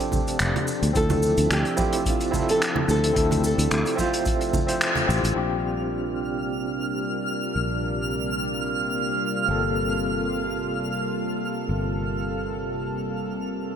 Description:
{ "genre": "sunset chillout", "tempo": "109 BPM", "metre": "4/4", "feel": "swing 53% on 16ths", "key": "unclear", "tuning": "A4 = 440 Hz", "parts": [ { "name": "overdriven tine electric piano", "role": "accompaniment", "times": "0.0-13.8 s", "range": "Bb3 to E5", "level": "-29 LUFS", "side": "moving between left 7 dB and right 5 dB", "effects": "fast tremolo, auto-pan, ping-pong delay" }, { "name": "lush unison pad", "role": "sustained chords", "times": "0.0-13.8 s", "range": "C3 to E5", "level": "-29 LUFS", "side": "equal", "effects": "chorus" }, { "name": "vintage brush drum kit", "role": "drums", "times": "0.0-5.3 s", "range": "cabasa, finger snaps, hi-hat", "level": "-28 LUFS", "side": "equal", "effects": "low-pass filter on hats, low-pass filter on perc, low-pass filter on snare, low-pass filter on room" }, { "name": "electronic kick drum", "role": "drums", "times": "0.1-4.7 s", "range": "none", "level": "-28 LUFS", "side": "equal", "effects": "none" }, { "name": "congas", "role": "percussion", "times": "0.1-5.1 s", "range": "none", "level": "-30 LUFS", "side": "right 4 dB", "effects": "none" }, { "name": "fingered electric bass", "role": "bass", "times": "0.4-13.8 s", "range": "F1 to D2", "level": "-27 LUFS", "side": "equal", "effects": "none" }, { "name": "nylon-string guitar", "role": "melody", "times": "1.0-5.1 s", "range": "F4 to A4", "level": "-27 LUFS", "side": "equal", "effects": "digital delay" }, { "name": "twinkling granular texture", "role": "texture", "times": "6.2-13.8 s", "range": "F6", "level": "-30 LUFS", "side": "right 2 dB", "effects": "built-in reverb" } ], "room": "moderate lush hall reverb, RT60 2.6 s", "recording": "none", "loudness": "-22 LUFS", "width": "side -8 dB against mid", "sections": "0.0-5.4 A section; 5.4-13.8 B section", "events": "band accent 4.8", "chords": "0.0 F6; 1.0 Dm9; 5.4 Bb69; 9.5 Gm11", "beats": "0.41 | 0.96 1.51 2.06 2.61 | 3.16 3.71 4.26 4.81 | 5.36 5.91 6.46 7.01 | 7.56 8.11 8.66 9.21 | 9.77 10.31 10.87 11.42 | 11.97 12.52 13.07 13.62" }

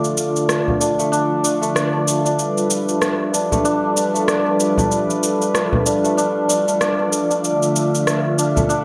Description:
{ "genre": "organic downtempo", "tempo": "95 BPM", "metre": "4/4", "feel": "swing 58% on 16ths", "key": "unclear", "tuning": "A4 = 440 Hz", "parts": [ { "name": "warm analog pad", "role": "sustained chords", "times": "0.0-8.8 s", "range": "D3 to E5", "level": "-23 LUFS", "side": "equal", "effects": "chorus, vintage 12-bit sampler grit" }, { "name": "santur", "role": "arpeggios", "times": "0.0-8.8 s", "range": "A3 to D5", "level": "-23 LUFS", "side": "equal", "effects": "low-pass filter, delay" }, { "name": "electronic shaker and rim click", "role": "drums", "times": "0.0-8.8 s", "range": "none", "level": "-25 LUFS", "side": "equal", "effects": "none" }, { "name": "wind-like tuned noise texture", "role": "texture", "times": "0.0-8.8 s", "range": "F3 to F4", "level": "-31 LUFS", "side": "equal", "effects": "built-in reverb" }, { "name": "frame drum", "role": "percussion", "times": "0.7-8.7 s", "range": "none", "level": "-25 LUFS", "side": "equal", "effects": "none" } ], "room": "moderate lush hall reverb, RT60 2.1 s", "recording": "none", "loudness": "-18 LUFS", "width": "mono", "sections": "0.0-8.8 A section", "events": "none", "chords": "0.0 Dm; 2.4 G7; 7.4 Dm", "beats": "0.49 1.12 1.75 | 2.38 3.01 3.65 4.28 | 4.91 5.54 6.17 6.80 | 7.43 8.07 8.70" }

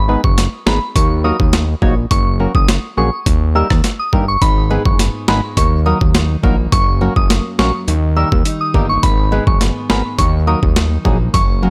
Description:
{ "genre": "dancehall", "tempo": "104 BPM", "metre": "4/4", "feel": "straight", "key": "unclear", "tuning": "A4 = 440 Hz", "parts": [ { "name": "fat analog bass", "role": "bass", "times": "0.0-11.7 s", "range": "F#1 to D#2", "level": "-19 LUFS", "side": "equal", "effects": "none" }, { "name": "percussive organ stab", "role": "accompaniment", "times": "0.1-11.7 s", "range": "F#3 to C#5", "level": "-22 LUFS", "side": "equal", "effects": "chorus" }, { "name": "soft synth bell", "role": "melody", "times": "0.2-11.6 s", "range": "B5 to E6", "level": "-23 LUFS", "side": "equal", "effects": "chorus, delay" }, { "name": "boom bap sampler-style drum kit", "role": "drums", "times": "0.2-11.5 s", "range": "hi-hat, kick drum, rim click, snare drum", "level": "-17 LUFS", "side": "equal", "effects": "overdrive" }, { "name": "picked steel-string acoustic guitar", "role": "arpeggios", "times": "4.4-11.7 s", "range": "F#2 to D#4", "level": "-25 LUFS", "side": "equal", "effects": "delay" } ], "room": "little or no reverb", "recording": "none", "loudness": "-15 LUFS", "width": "mono", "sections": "0.0-11.7 A section", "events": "none", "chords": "0.0 G#m; 1.0 D#m; 2.1 F#; 3.3 D#; 4.4 G#m; 5.6 D#m; 6.7 F#; 7.9 D#; 9.0 G#m; 10.2 D#m", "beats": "0.38 0.95 1.53 | 2.11 2.69 3.26 3.84 | 4.42 4.99 5.57 6.15 | 6.72 7.30 7.88 8.46 | 9.03 9.61 10.19 10.76 | 11.34" }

